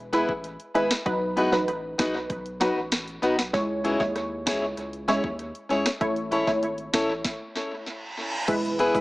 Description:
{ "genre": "dancehall", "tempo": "97 BPM", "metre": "4/4", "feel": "straight", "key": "E major", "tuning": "A4 = 442 Hz", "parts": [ { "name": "saturated sub bass", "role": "bass", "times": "0.0-9.0 s", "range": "E1 to D#2", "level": "-40 LUFS", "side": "equal", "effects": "none" }, { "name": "punchy chord stab", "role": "accompaniment", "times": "0.1-9.0 s", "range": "F#3 to C#5", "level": "-27 LUFS", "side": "equal", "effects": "chorus, sidechain pumping, tape echo" }, { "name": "fingerpicked plugged-in acoustic archtop guitar", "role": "arpeggios", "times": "0.1-9.0 s", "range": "B3 to C#5", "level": "-27 LUFS", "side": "left 1 dB", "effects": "tape echo" }, { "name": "afro-pop drum kit", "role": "drums", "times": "0.1-9.0 s", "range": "crash cymbal, hi-hat, kick drum, rim click, snare drum", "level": "-31 LUFS", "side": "equal", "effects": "tape echo" }, { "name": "reverse cymbal and impact", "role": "sound effects", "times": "7.8-9.0 s", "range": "none", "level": "-33 LUFS", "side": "right 2 dB", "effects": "none" }, { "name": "tube shaker", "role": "percussion", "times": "8.5-9.0 s", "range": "none", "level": "-46 LUFS", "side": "right 2 dB", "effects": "none" } ], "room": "moderate spring reverb, RT60 1.7 s", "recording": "echo-heavy mix, small speaker sound", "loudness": "-24 LUFS", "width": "side -19 dB against mid", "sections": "0.0-8.5 A section", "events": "stop 7.2-8.5; reverse cymbal 7.8-8.5; impact 8.5-9.0", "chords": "0.0 E; 1.1 B; 3.5 C#m; 6.0 A; 8.5 E", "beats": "0.44 | 1.06 1.68 2.30 2.92 | 3.54 4.16 4.77 5.39 | 6.01 6.63 7.25 7.87 | 8.48" }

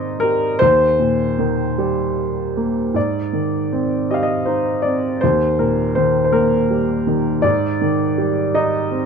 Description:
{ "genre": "classical, lyrical solo piano", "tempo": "53 BPM (dotted quarters)", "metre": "6/8", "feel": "rubato", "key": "unclear", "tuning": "A4 = 438 Hz", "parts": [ { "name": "warm baby grand piano", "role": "solo", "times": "0.0-9.1 s", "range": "Eb2 to F5", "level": "-16 LUFS", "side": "equal", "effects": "none" } ], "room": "light reverb", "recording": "dark, warm production", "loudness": "-16 LUFS", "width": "side -6 dB against mid", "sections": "0.0-3.0 A section; 3.0-9.1 B section", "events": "none", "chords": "0.0 Abmaj7; 0.6 Cm7/Eb; 3.0 Abmaj7; 5.2 Eb6; 7.4 Abmaj7(no3)", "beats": "| 0.62 1.79 | 2.95 4.10 | 5.22 6.33 | 7.44 8.54" }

